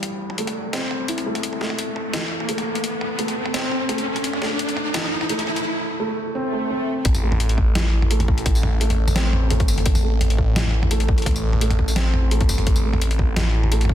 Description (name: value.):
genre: half-time drum and bass.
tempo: 171 BPM.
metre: 4/4.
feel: swing 53% on 16ths, half-time.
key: unclear.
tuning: A4 = 440 Hz.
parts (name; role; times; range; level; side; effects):
felt-muted upright piano; arpeggios; 0.0-13.9 s; E3 to E4; -26 LUFS; equal; low-pass filter, digital delay.
boom bap sampler-style drum kit; drums; 0.0-13.9 s; hi-hat, snare drum, tambourine, toms; -26 LUFS; equal; high-pass filter on hats, studio reverb, high-pass filter on toms, high-pass filter on snare, high-pass filter on perc.
riser and swell; sound effects; 0.0-7.1 s; none; -27 LUFS; equal; none.
phased detuned saw bass; bass; 7.1-13.9 s; G1 to A1; -19 LUFS; equal; phaser.
electronic kick drum; drums; 7.1-13.9 s; none; -20 LUFS; equal; studio reverb.
room: light reverb.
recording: dense, heavily limited modern master.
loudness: -19 LUFS.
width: side -11 dB against mid.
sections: 0.0-7.1 A section; 7.1-13.9 B section.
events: build-up 0.0-7.1; riser 0.0-5.6; swell 6.4-7.1; drop 7.1-13.9.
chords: 0.0 A5.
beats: | 0.04 0.39 0.74 1.09 | 1.44 1.79 2.14 2.49 | 2.84 3.19 3.54 3.90 | 4.25 4.60 4.95 5.30 | 5.65 6.00 6.35 6.70 | 7.05 7.40 7.75 8.11 | 8.46 8.81 9.16 9.51 | 9.86 10.21 10.56 10.91 | 11.26 11.61 11.96 12.32 | 12.67 13.02 13.37 13.72.